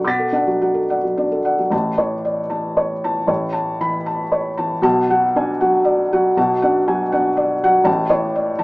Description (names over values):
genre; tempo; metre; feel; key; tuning
neoclassical minimalist piano; 106-123 BPM; 3/4; rubato; A major; A4 = 442 Hz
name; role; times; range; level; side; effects
felt-muted upright piano; solo; 0.0-8.6 s; A1 to B6; -16 LUFS; equal; none
room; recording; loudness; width
moderate small room reverb, RT60 0.6 s; band playing live in one room, small speaker sound; -16 LUFS; side -24 dB against mid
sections
0.0-1.7 A section; 1.7-8.6 B section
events
none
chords
0.0 Bm7; 1.7 A; 4.8 Bm7; 7.9 A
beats
| 0.04 0.61 1.17 | 1.72 2.25 2.77 | 3.29 3.81 4.33 | 4.84 5.35 5.85 | 6.36 6.87 7.37 | 7.87 8.36